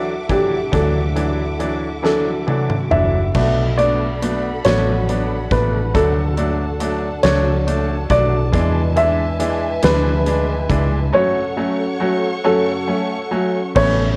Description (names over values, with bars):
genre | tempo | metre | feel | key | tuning
six-eight pop ballad | 46 BPM (dotted quarters) | 6/8 | straight | unclear | A4 = 440 Hz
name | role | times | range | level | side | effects
dark baby grand piano | melody | 0.0-14.2 s | G4 to E5 | -22 LUFS | equal | analog delay
bright upright piano | accompaniment | 0.0-14.0 s | E3 to D4 | -25 LUFS | equal | none
warm studio string section | sustained chords | 0.0-14.2 s | D4 to D6 | -31 LUFS | equal | none
picked steel-string acoustic guitar | arpeggios | 0.0-14.2 s | E2 to F#4 | -29 LUFS | equal | analog delay
vintage muted fingered electric bass | bass | 0.0-14.2 s | F#1 to E2 | -23 LUFS | equal | none
huge arena drum kit | drums | 0.3-14.0 s | crash cymbal, hi-hat, kick drum, snare drum, toms | -26 LUFS | equal | none
room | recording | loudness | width
light reverb, small room ambience | worn, warbling old tape, cassette tape, warbly pitch drift | -18 LUFS | mono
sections
0.0-3.3 A section; 3.3-13.8 B section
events
drum fill 2.0-3.3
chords
0.0 Dadd9; 3.3 Bm7; 5.9 D; 8.5 E7; 11.1 F#m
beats
| 0.73 2.04 | 3.35 4.65 | 5.95 7.24 | 8.54 9.83 | 11.13 12.45 | 13.76